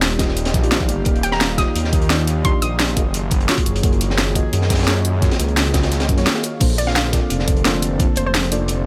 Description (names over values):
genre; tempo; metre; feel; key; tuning
liquid drum and bass; 173 BPM; 4/4; straight; Bb major; A4 = 442 Hz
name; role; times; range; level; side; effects
mellow FM electric piano; accompaniment; 0.0-8.9 s; Bb3 to F5; -28 LUFS; equal; chorus, dub echo
airy breathy pad; sustained chords; 0.1-8.9 s; D3 to F5; -31 LUFS; equal; chorus
swelling detuned saw bass; bass; 0.0-8.9 s; Eb1 to Gb2; -23 LUFS; equal; none
crunchy breakbeat drum kit; drums; 0.0-8.8 s; hi-hat, snare drum; -29 LUFS; equal; high-pass filter on hats, high-pass filter on snare, high-pass filter on room
drum and bass drum kit; drums; 0.0-8.8 s; crash cymbal, hi-hat, snare drum; -23 LUFS; equal; overdrive
electronic kick drum; drums; 0.2-8.1 s; none; -21 LUFS; equal; overdrive
hollow square pluck; melody; 1.2-3.0, 6.8-8.6 s; C5 to Eb6; -29 LUFS; equal; chorus, dub echo
room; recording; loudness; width
digital ambience; none; -18 LUFS; mono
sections
0.0-6.6 A section; 6.6-8.9 A section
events
drop 0.0-6.6, 6.6-8.9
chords
0.0 Ebmaj9; 3.0 Gbmaj9; 6.6 Bbmaj9